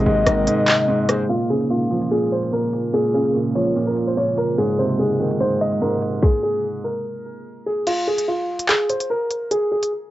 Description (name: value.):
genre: hip hop, drill.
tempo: 146 BPM.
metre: 4/4.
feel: half-time.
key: unclear.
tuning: A4 = 441 Hz.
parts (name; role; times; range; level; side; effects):
dark grand piano; melody; 0.0-9.9 s; F4 to Eb5; -22 LUFS; equal; low-pass filter, cassette tape, analog delay, plate reverb.
hollow clarinet-like synth lead; second line; 0.0-1.3 s; C5 to Eb5; -21 LUFS; left 3 dB; chorus, cassette tape, analog delay, plate reverb.
felt-muted upright piano; accompaniment; 0.0-6.8 s; Ab2 to F3; -22 LUFS; right 2 dB; cassette tape.
deep dark ambient pad; sustained chords; 0.0-6.2 s; C3 to F4; -28 LUFS; equal; chorus, built-in reverb, cassette tape.
distorted 808-style bass; bass; 0.0-0.5 s; Ab1; -22 LUFS; equal; distortion.
drill drum kit; drums; 0.3-9.9 s; crash cymbal, handclaps, hi-hat, kick drum, rim click, snare drum; -20 LUFS; equal; vintage 12-bit sampler grit, cassette tape.
room: moderate studio reverb, RT60 0.5 s.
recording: home recording on cassette, low-pass filter, nothing above 7.9 kHz.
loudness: -18 LUFS.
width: side -15 dB against mid.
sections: 0.0-1.3 A section; 1.3-7.9 B section; 7.9-10.1 C section.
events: kick muted 0.5-1.3, 7.9-10.1; filter sweep 1.3-7.9; stop 6.2-7.9.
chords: 0.0 Abadd9; 1.3 Bbm7; 4.6 Abadd9; 7.9 N.C..